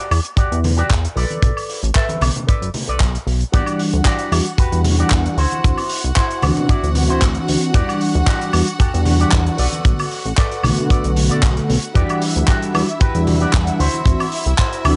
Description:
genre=nu-disco, nu disco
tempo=114 BPM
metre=4/4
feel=swing 54% on 16ths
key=E minor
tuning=A4 = 440 Hz
part: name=electric guitar with an envelope filter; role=riff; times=0.0-14.9 s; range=E4 to E5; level=-27 LUFS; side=equal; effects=lush chorus
part: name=chorused synth bass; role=bass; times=0.1-14.9 s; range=F#1 to E2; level=-21 LUFS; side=equal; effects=none
part: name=damped 70s drum kit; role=drums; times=0.1-15.0 s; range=handclaps, hi-hat, woodblock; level=-26 LUFS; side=equal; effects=studio ambience
part: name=kick drum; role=drums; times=0.4-14.7 s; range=none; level=-18 LUFS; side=equal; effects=studio ambience
part: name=congas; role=percussion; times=0.6-15.0 s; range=none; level=-29 LUFS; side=equal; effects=none
part: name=mellow synth brass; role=accompaniment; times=3.5-15.0 s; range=D3 to F#5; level=-23 LUFS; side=equal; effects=chorus, cassette tape, sidechain pumping, slapback echo
part: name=rich studio string section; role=sustained chords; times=3.5-15.0 s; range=E4 to F#5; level=-32 LUFS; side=equal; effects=sidechain pumping
room=little or no reverb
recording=nothing above 10.8 kHz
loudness=-17 LUFS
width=mono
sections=0.0-15.0 A section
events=none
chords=0.0 Em9; 1.2 Bm7; 3.5 Em9; 5.4 D9; 7.7 Em9; 9.6 Bm7; 12.0 Em9; 13.8 D9

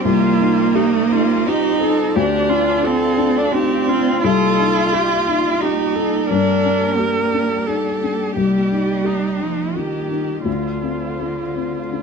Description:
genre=neoclassical piano and strings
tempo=86 BPM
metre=3/4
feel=rubato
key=C dorian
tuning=A4 = 435 Hz
part: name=warm cello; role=second line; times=0.0-12.0 s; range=D3 to F4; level=-19 LUFS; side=right 5 dB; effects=none
part: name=felt-muted upright piano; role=accompaniment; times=0.0-12.0 s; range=C2 to G4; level=-21 LUFS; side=left 7 dB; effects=none
part: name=warm viola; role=accompaniment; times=0.0-12.0 s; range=Eb4 to Bb4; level=-22 LUFS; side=right 2 dB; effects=none
part: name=rich chamber string section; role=sustained chords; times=0.0-12.0 s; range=A3 to Eb5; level=-29 LUFS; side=equal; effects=none
room=light reverb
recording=dark, warm production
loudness=-15 LUFS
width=side -5 dB against mid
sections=0.0-12.0 A section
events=none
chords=0.0 Cm7; 2.1 Dm7; 4.2 Cm7; 6.3 Gm; 8.3 Cm7; 10.5 Dm7

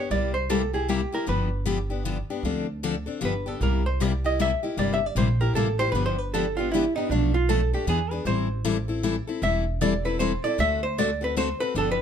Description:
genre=acoustic string swing (jazz manouche)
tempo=155 BPM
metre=3/4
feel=swing 62% on 8ths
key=G mixolydian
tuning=A4 = 440 Hz
part: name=archtop guitar, miked and amplified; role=melody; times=0.0-12.0 s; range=D4 to E5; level=-26 LUFS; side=right 2 dB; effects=none
part: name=picked steel-string acoustic guitar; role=accompaniment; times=0.0-12.0 s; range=B2 to A4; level=-27 LUFS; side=left 6 dB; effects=none
part: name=upright bass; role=bass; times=0.1-12.0 s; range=E1 to E2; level=-27 LUFS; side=right 1 dB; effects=none
room=light reverb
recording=close, detailed microphones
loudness=-23 LUFS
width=side -8 dB against mid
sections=0.0-12.0 A section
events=hollow-body jazz guitar solo 0.0-12.0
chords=0.1 C7; 1.3 G7; 2.4 Dm7; 3.2 G7; 3.6 C7; 5.9 G7; 7.1 Bm7b5; 7.9 E7; 8.3 Am7; 10.6 D7

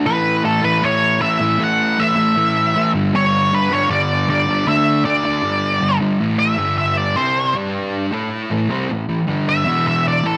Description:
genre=rock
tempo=156 BPM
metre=4/4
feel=straight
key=unclear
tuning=A4 = 440 Hz
part: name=fuzz guitar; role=riff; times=0.0-10.4 s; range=E2 to A4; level=-20 LUFS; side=equal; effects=distortion
part: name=octave-fuzz lead guitar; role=melody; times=0.1-10.4 s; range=A4 to F#5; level=-20 LUFS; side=equal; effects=distortion
room=moderate echo chamber reverb, RT60 2.2 s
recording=none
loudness=-17 LUFS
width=mono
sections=0.0-6.2 A section; 6.2-10.4 B section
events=lead electric guitar solo 6.2-10.4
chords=0.1 A5; 2.9 G5; 4.7 D5; 5.4 G5; 6.2 A5; 6.6 G5; 7.2 C5; 7.5 G5; 8.1 A5; 9.3 G5; 9.7 E5

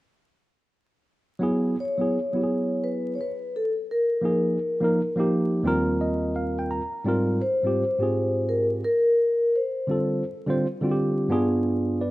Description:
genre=hip hop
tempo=85 BPM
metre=4/4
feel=swing 65% on 16ths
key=unclear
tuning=A4 = 440 Hz
part: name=tine electric piano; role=accompaniment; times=1.4-12.1 s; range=D#2 to A#5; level=-24 LUFS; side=right 1 dB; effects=overdrive
part: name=vibraphone with soft mallets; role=melody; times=1.8-10.2 s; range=A4 to C#5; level=-24 LUFS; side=left 1 dB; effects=none
room=light reverb, small room ambience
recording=rough home demo mix, vinyl crackle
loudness=-22 LUFS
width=side -18 dB against mid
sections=1.4-12.1 A section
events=tine electric piano fill 5.7-7.1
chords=1.4 Bsus2; 4.2 A#5; 5.7 D#69; 7.1 G#69; 9.9 Dm7; 11.3 G7b9

